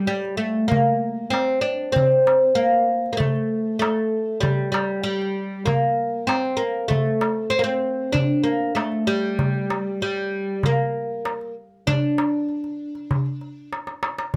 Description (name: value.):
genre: Arabic maqam ensemble.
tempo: 97 BPM.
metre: 4/4.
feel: straight.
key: D maqam hijaz.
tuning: A4 = 440 Hz.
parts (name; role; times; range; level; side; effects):
oud; melody; 0.0-13.7 s; G3 to D4; -23 LUFS; equal; none.
darbuka; percussion; 0.1-14.4 s; none; -26 LUFS; equal; none.
room: light reverb.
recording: close, detailed microphones.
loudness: -22 LUFS.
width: mono.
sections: 0.0-14.4 A section.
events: drum fill 13.7-14.4.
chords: none.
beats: 0.10 0.72 1.34 | 1.96 2.58 3.20 3.82 | 4.44 5.06 5.68 6.30 | 6.92 7.54 8.16 8.78 | 9.40 10.02 10.64 11.26 | 11.88 12.50 13.12 13.74 | 14.36.